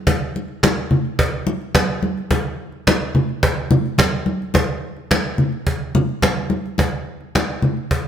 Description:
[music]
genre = disco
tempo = 107 BPM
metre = 4/4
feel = straight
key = none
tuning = none
[part]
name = cajon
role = drums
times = 0.1-8.0 s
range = none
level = -19 LUFS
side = right 1 dB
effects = none
[part]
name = congas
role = percussion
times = 0.1-7.8 s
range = none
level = -20 LUFS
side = left 1 dB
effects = none
[sound]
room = light reverb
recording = none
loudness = -17 LUFS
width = side -9 dB against mid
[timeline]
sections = 0.0-6.8 A section; 6.8-8.1 B section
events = none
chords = none

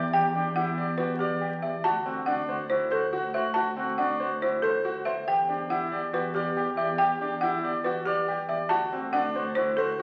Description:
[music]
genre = classical, minimalist pattern music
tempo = 140 BPM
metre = 4/4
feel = straight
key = D mixolydian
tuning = A4 = 445 Hz
[part]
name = folk marimba with medium hard mallets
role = melody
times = 0.0-10.0 s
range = G4 to A5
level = -30 LUFS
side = equal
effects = none
[part]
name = mellow oboe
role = second line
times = 0.0-10.0 s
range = F#4 to G4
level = -36 LUFS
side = equal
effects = none
[part]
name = bright grand piano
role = arpeggios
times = 0.0-10.0 s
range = C4 to D5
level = -33 LUFS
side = equal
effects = none
[part]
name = rich symphonic double bass section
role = bass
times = 0.0-10.0 s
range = D2 to E2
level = -38 LUFS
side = equal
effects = none
[sound]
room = wet recital hall reverb, RT60 1.3 s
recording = very old 78 rpm record, vinyl crackle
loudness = -27 LUFS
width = mono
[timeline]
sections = 0.0-10.0 A section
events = none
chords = 0.0 Em7; 1.9 D7; 5.3 Em7; 8.7 D7

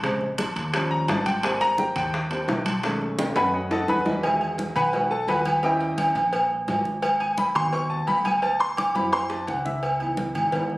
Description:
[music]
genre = Afro-Cuban jazz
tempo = 172 BPM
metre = 4/4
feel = straight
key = E major from 4.2 s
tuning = A4 = 440 Hz
[part]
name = clear upright piano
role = accompaniment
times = 0.0-10.7 s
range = Db3 to D6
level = -25 LUFS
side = equal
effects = none
[part]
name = upright bass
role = bass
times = 0.0-10.8 s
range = Ab1 to F#2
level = -32 LUFS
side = equal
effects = none
[part]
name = bongos and cowbell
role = percussion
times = 0.0-10.7 s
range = none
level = -31 LUFS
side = left 1 dB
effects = none
[part]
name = congas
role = percussion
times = 0.0-10.8 s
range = none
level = -32 LUFS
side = equal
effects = none
[part]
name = timbales and agogo bells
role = percussion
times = 0.0-10.7 s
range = none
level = -26 LUFS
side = right 1 dB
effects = none
[sound]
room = moderate studio ambience, RT60 0.5 s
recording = recorded on a phone in the room, studio reverb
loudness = -21 LUFS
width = side -19 dB against mid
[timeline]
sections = 0.0-4.2 A section; 4.2-10.8 A section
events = upright piano solo 0.0-10.8; drum fill 3.2-4.2, 9.0-9.8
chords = 0.0 Bbm9; 0.7 Eb9; 1.4 Abmaj9; 2.8 B13; 4.2 Emaj9; 5.6 D#7b9; 7.0 G#m7; 8.4 D9; 9.8 C#m9

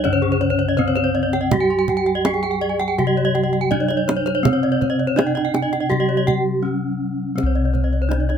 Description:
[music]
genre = Balinese gamelan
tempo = 82 BPM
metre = 4/4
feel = straight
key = C pelog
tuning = A4 = 440 Hz
[part]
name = gamelan-type bronze metallophone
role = melody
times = 0.0-8.4 s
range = C4 to Ab4-40c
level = -22 LUFS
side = right 2 dB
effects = none
[part]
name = gamelan-type bronze metallophone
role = accompaniment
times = 0.0-8.4 s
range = C3 to G3-45c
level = -27 LUFS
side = equal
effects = none
[part]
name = gamelan-type bronze metallophone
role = arpeggios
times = 0.0-8.3 s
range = Ab4-40c to C6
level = -26 LUFS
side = left 4 dB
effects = none
[part]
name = gamelan-type bronze metallophone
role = arpeggios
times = 0.0-8.4 s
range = C5 to Ab5-40c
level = -25 LUFS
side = right 3 dB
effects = none
[part]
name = gamelan-type bossed gongs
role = bass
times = 0.0-8.4 s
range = C2 to G4-45c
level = -23 LUFS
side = left 2 dB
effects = none
[part]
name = kendang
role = percussion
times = 0.0-8.4 s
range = none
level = -23 LUFS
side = right 3 dB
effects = none
[sound]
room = little or no reverb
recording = close, detailed microphones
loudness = -17 LUFS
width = side -8 dB against mid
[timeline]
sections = 0.0-7.4 A section; 7.4-8.4 A section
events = break 6.3-7.4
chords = none

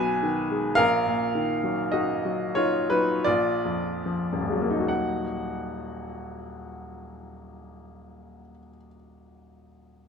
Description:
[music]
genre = classical, romantic nocturne for solo piano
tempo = 35-56 BPM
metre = 3/4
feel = rubato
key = Eb minor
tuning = A4 = 440 Hz
[part]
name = clear upright piano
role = solo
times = 0.0-10.1 s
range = Eb1 to Ab5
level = -24 LUFS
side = left 1 dB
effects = none
[sound]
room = light reverb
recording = close, detailed microphones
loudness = -23 LUFS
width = side -6 dB against mid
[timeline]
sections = 0.0-4.9 A section; 4.9-9.7 B section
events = slowing down 0.0-4.9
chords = 0.0 Abm/Cb; 0.8 Ebm/Bb; 3.3 Bb7; 4.9 Ebm

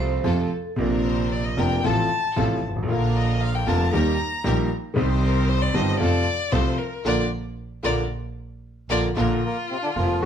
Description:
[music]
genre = tango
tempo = 114 BPM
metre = 4/4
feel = rubato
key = Bb major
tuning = A4 = 440 Hz
[part]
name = vibraphone with hard mallets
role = second line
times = 0.0-0.9 s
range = A4 to C5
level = -30 LUFS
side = right 6 dB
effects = none
[part]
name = warm concert grand piano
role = accompaniment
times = 0.0-10.3 s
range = F1 to G4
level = -23 LUFS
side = equal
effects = none
[part]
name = rich studio string section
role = stabs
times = 0.0-10.3 s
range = C4 to C5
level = -32 LUFS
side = left 2 dB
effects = none
[part]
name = clear double bass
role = bass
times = 0.0-10.3 s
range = F1 to F2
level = -26 LUFS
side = right 2 dB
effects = none
[part]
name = warm violin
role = second line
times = 1.0-10.3 s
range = F4 to Bb5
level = -27 LUFS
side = left 3 dB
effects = none
[part]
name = bandoneon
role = melody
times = 9.4-10.3 s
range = C3 to Bb4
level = -26 LUFS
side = equal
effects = plate reverb
[sound]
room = moderate studio reverb, RT60 0.9 s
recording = none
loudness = -20 LUFS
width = side -8 dB against mid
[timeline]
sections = 0.0-9.2 A section; 9.2-10.3 A section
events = violin solo 0.0-9.2; band accent 7.1-9.2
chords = 0.0 F; 0.8 Bbadd9; 1.8 F/A; 2.9 Bb; 3.9 Eb; 5.0 Cm; 6.0 F; 7.1 Bb

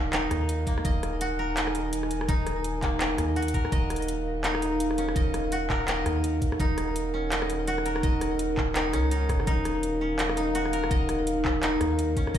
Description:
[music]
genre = half-time drum and bass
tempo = 167 BPM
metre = 4/4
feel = swing 58% on 16ths, half-time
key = Eb minor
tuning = A4 = 441 Hz
[part]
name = dark analog pad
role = sustained chords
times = 0.0-12.4 s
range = Eb4 to Ab5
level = -29 LUFS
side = equal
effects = chorus, sidechain pumping
[part]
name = koto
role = arpeggios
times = 0.0-12.4 s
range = Bb3 to Eb5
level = -32 LUFS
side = equal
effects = ping-pong delay
[part]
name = saturated sub bass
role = bass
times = 0.0-12.4 s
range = Eb1 to Eb2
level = -31 LUFS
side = equal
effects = none
[part]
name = drum and bass drum kit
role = drums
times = 0.1-12.4 s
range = handclaps, hi-hat, rim click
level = -32 LUFS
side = equal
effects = none
[part]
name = electronic kick drum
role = drums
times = 0.7-12.4 s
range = none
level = -27 LUFS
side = equal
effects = none
[sound]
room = light reverb, digital ambience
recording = played on a big sound system in a bare room, large studio reverb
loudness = -24 LUFS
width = side -10 dB against mid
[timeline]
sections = 0.0-12.4 A section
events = none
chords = 0.0 Ebm

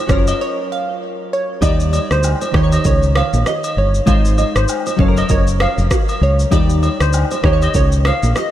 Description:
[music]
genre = afrobeats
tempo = 98 BPM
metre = 4/4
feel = swing 58% on 16ths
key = unclear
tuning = A4 = 440 Hz
[part]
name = glassy digital keys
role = accompaniment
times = 0.0-8.5 s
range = Eb3 to F5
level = -22 LUFS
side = left 1 dB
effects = chorus, phaser
[part]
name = nylon-string guitar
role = riff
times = 0.0-8.5 s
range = Gb4 to F5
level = -27 LUFS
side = right 5 dB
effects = wide subtle chorus, diffuse ambient delay
[part]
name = glassy wavetable pluck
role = melody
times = 0.1-8.5 s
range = C5 to F5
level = -21 LUFS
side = right 1 dB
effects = chorus, diffuse ambient delay
[part]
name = fingered electric bass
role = bass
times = 0.1-8.3 s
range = F1 to Eb2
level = -15 LUFS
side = equal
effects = none
[part]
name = afro-pop drum kit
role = drums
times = 0.1-8.5 s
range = kick drum, rim click, shaker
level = -19 LUFS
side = equal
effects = overdrive
[part]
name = agogo bells and woodblock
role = percussion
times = 0.3-8.2 s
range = none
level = -26 LUFS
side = left 2 dB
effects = none
[sound]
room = light reverb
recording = none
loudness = -13 LUFS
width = side -12 dB against mid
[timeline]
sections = 0.0-8.5 A section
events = break 0.4-1.6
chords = 0.1 Gbmaj7; 1.6 Ebmaj7; 2.5 Eb7; 4.1 Ab6; 5.0 Gbmaj7; 6.5 Ebmaj7; 7.4 Eb7

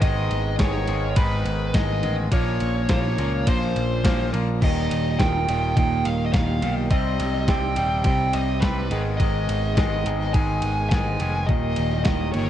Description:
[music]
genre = indie rock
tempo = 105 BPM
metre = 4/4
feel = straight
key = Eb mixolydian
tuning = A4 = 440 Hz
[part]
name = dark smooth lead guitar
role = melody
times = 0.0-12.5 s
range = Cb5 to Ab5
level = -27 LUFS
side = right 1 dB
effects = overdrive
[part]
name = tonewheel organ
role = sustained chords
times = 0.0-12.5 s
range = Ab3 to Eb5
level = -36 LUFS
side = equal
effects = slow rotary speaker, overdrive
[part]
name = twangy electric guitar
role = riff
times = 0.0-12.5 s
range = Eb2 to C4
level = -30 LUFS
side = left 8 dB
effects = none
[part]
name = twangy electric guitar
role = riff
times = 0.0-12.5 s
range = Eb2 to C4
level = -29 LUFS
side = right 7 dB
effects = lush chorus
[part]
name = modern bright picked electric bass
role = bass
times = 0.0-12.5 s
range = Eb1 to Db2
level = -25 LUFS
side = equal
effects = none
[part]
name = clean 12-bit digital drum machine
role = drums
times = 0.0-12.5 s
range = crash cymbal, kick drum, ride cymbal, snare drum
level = -24 LUFS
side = equal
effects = none
[sound]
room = light reverb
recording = cassette tape, nothing above 10.3 kHz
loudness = -20 LUFS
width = side -11 dB against mid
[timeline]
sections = 0.0-12.5 A section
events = none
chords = 0.0 Abm; 2.3 Bbmadd9; 4.6 Ebadd9; 6.9 Cm; 8.9 Abm; 11.5 Eb

